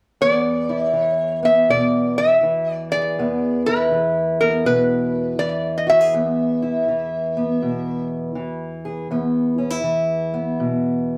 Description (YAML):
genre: acoustic country blues, solo or duo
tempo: 81 BPM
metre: 4/4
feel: swing 65% on 8ths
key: E mixolydian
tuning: A4 = 436 Hz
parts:
  - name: metal-body resonator slide guitar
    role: melody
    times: 0.2-8.1 s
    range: A#4 to E5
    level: -21 LUFS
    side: equal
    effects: slapback echo
  - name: fingerpicked steel-string acoustic guitar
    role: accompaniment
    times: 0.2-11.2 s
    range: E2 to G#4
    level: -23 LUFS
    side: equal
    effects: none
room: moderate studio reverb, RT60 0.6 s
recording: none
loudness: -20 LUFS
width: mono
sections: 0.2-11.2 A section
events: none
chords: 0.2 E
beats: | 0.20 0.94 1.69 2.43 | 3.17 3.91 4.65 5.39 | 6.13 6.88 7.62 8.36 | 9.10 9.85 10.59